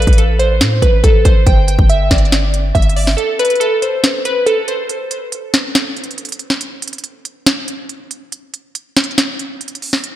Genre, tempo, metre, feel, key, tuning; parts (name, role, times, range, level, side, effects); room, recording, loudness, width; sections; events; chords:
hip hop, trap; 140 BPM; 4/4; half-time; A4 = 440 Hz
glassy digital keys; melody; 0.0-4.8 s; A4 to G5; -16 LUFS; right 1 dB; chorus, low-pass filter, analog delay
warm 808-style bass; bass; 0.0-3.2 s; G1 to A2; -14 LUFS; equal
trap drum kit; drums; 0.0-10.1 s; hi-hat, kick drum, snare drum; -14 LUFS; equal
moderate lush hall reverb, RT60 2.0 s; dreamy mix soaked in reverb; -12 LUFS; side -13 dB against mid
0.0-10.2 A section
break 3.2-10.2
0.0 Am; 1.5 G5; 3.2 N.C.